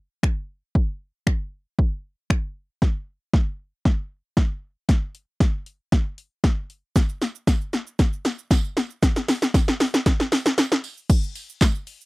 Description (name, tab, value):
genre	pop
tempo	116 BPM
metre	4/4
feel	straight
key	none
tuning	none
part	punchy analog drum machine	drums	0.2-12.1 s	crash cymbal, finger snaps, handclaps, hi-hat, kick drum, shaker, snare drum	-19 LUFS	equal	overdrive
part	tambourine	percussion	7.0-11.7 s	none	-39 LUFS	right 9 dB	none
room	little or no reverb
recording	dry, close 1970s-style studio recording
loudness	-21 LUFS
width	side -22 dB against mid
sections	0.0-2.8 A section; 2.8-11.1 B section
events	build-up 2.8-11.1; drum fill 2.8-11.1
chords	none